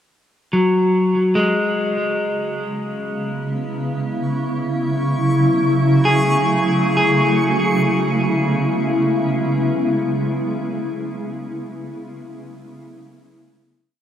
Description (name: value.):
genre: ambient.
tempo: free time.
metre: none.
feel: none.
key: C# minor.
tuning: A4 = 440 Hz.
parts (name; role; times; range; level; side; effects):
granular cloud pad; sustained chords; 2.7-11.0 s; C#3 to E4; -18 LUFS; equal; built-in reverb.
electric guitar at the edge of break-up; arpeggios; 0.5-10.9 s; F#3 to G#4; -20 LUFS; left 1 dB; diffuse ambient delay.
backwards swelling texture; texture; 4.3-7.0 s; C#6; -28 LUFS; equal; built-in reverb.
room: wet huge ambient reverb, RT60 7.6 s.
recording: cassette tape.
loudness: -16 LUFS.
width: side -10 dB against mid.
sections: 0.4-7.0 A section; 7.0-10.3 final chord.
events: fade-in on ambient pad 0.4-7.0.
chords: 0.4 C#m7; 3.7 F#m7/C#; 7.0 C#m7.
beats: free time.